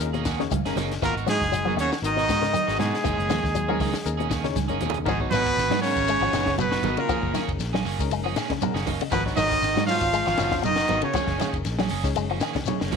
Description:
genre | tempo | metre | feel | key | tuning
afrobeat | 118 BPM | 4/4 | swing 54% on 16ths | unclear | A4 = 440 Hz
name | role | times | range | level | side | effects
clear trumpet | melody | 0.0-11.5 s | G#4 to E#5 | -26 LUFS | equal | slapback echo
edgy baritone saxophone | second line | 0.0-11.5 s | G#2 to E#3 | -33 LUFS | left 12 dB | none
warm trombone | second line | 0.0-11.5 s | G#3 to E#4 | -31 LUFS | right 14 dB | slapback echo
barky reed electric piano | accompaniment | 0.0-13.0 s | B3 to G#5 | -34 LUFS | left 13 dB | overdrive, fast tremolo
fingered electric bass | bass | 0.0-13.0 s | F#1 to G#2 | -29 LUFS | equal | none
compact cocktail drum kit | drums | 0.0-13.0 s | hi-hat, kick drum, ride cymbal, snare drum | -31 LUFS | left 3 dB | none
congas | percussion | 0.0-13.0 s | none | -31 LUFS | right 14 dB | none
shekere | percussion | 0.0-13.0 s | none | -36 LUFS | left 6 dB | none
electric guitar with an envelope filter | arpeggios | 0.1-12.9 s | B2 to G#3 | -31 LUFS | left 13 dB | none
electric guitar at the edge of break-up | stabs | 0.1-13.0 s | D#3 to G#4 | -32 LUFS | right 13 dB | wide subtle chorus
room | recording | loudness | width
light reverb, studio ambience | 1960s-style stereo with parts hard left and right | -22 LUFS | side -6 dB against mid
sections
0.0-5.1 A section; 5.1-13.0 B section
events
reed electric piano fill 0.0-1.0, 4.3-5.1, 8.1-9.1; drum fill 4.6-5.1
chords
0.0 F#69

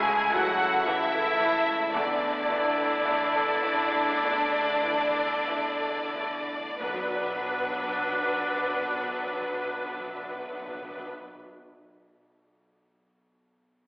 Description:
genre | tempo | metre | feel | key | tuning
cinematic, emotional film score for orchestra | 44-58 BPM | 4/4 | rubato | B minor | A4 = 441 Hz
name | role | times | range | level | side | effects
clear symphonic violin section | melody | 0.0-11.1 s | B4 to G#5 | -30 LUFS | equal | none
mellow hollow concert flute | second line | 0.0-11.1 s | F#5 to A5 | -34 LUFS | equal | none
rich studio violin section | second line | 0.0-11.1 s | D4 to B4 | -34 LUFS | equal | none
warm oboe | second line | 0.0-11.1 s | D4 to E4 | -32 LUFS | equal | none
felt-muted upright piano | accompaniment | 0.0-13.9 s | B1 to E5 | -36 LUFS | equal | none
mellow French horn section | sustained chords | 0.0-11.1 s | G#3 to F#4 | -36 LUFS | equal | none
concert harp | arpeggios | 0.0-11.4 s | B2 to C#6 | -43 LUFS | equal | none
rich symphonic cello section | bass | 0.0-11.1 s | D3 to B3 | -39 LUFS | equal | none
rich symphonic double bass section | bass | 0.0-11.1 s | B1 to E2 | -42 LUFS | equal | none
rich symphonic viola section | accompaniment | 0.3-11.1 s | E3 to D4 | -36 LUFS | equal | none
timpani | percussion | 6.8-11.1 s | B2 | -44 LUFS | equal | none
room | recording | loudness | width
wet scoring stage reverb, RT60 1.7 s | heard from further back in the room, telephone sound | -24 LUFS | side -33 dB against mid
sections
0.0-6.8 A section; 6.8-12.0 B section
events
slowing down 0.0-6.8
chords
0.0 A/C#; 1.9 Esus4; 6.8 Bm

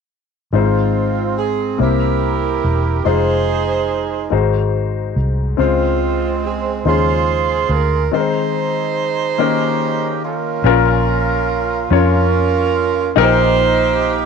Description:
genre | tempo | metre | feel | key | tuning
slow gospel | 48 BPM (dotted quarters) | 6/8 | straight | Ab major | A4 = 441 Hz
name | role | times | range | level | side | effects
mellow saxophone section | melody | 0.5-14.3 s | Ab3 to C5 | -18 LUFS | right 9 dB | none
warm concert grand piano | accompaniment | 0.5-14.3 s | Ab2 to Db5 | -19 LUFS | left 12 dB | none
vintage muted fingered electric bass | bass | 0.5-14.3 s | E1 to F2 | -19 LUFS | equal | none
room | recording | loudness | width
light reverb, small room ambience | 1960s-style stereo with parts hard left and right | -14 LUFS | side -6 dB against mid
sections
0.5-10.6 A section; 10.6-14.3 B section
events
none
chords
0.5 Ab6; 1.8 C7; 3.1 Fm7; 4.3 Ab7; 5.6 Dbmaj7; 6.9 Eb9sus4; 8.1 Ab/Eb; 9.4 Eb7; 10.6 Bbm; 13.2 Eb/Bb

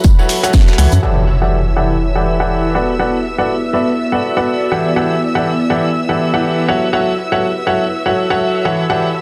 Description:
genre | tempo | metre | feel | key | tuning
piano house | 122 BPM | 4/4 | swing 58% on 16ths | E dorian | A4 = 440 Hz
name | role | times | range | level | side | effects
dark studio violin section | sustained chords | 0.0-9.2 s | B4 to E6 | -27 LUFS | equal | sidechain pumping
organ-like FM bass | bass | 0.0-1.0 s | F#1 to F#2 | -14 LUFS | equal | sidechain pumping
electronic kick drum | drums | 0.0-0.7 s | none | -12 LUFS | equal | none
electronic shaker and snare drum | drums | 0.0-1.0 s | none | -27 LUFS | equal | sidechain pumping on perc, high-pass filter on perc, sidechain pumping on hats, high-pass filter on hats, high-pass filter on snare, high-pass filter on room
tambourine | percussion | 0.0-1.0 s | none | -34 LUFS | equal | none
ethereal airy pad | texture | 0.0-9.2 s | B3 to A5 | -24 LUFS | equal | ensemble chorus, built-in reverb, sidechain pumping
house drum kit | drums | 0.1-1.0 s | hi-hat, shaker, snare drum | -23 LUFS | equal | low-pass filter on hats, low-pass filter on perc, soft clipping on snare, low-pass filter on snare, low-pass filter on room
bright upright piano | riff | 0.2-9.1 s | E3 to F#5 | -18 LUFS | equal | sidechain pumping, low-pass filter, digital delay
impact | sound effects | 1.0-3.0 s | none | -20 LUFS | equal | none
room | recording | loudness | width
moderate digital room reverb, RT60 1.2 s | dense, heavily limited modern master | -15 LUFS | mono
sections
0.0-1.0 A section; 1.0-9.2 B section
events
impact 1.0-3.0; filter sweep on upright piano 1.0-9.2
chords
0.0 F#m7; 1.0 Em11; 2.8 Bm7; 4.7 Em11; 6.7 F#m7

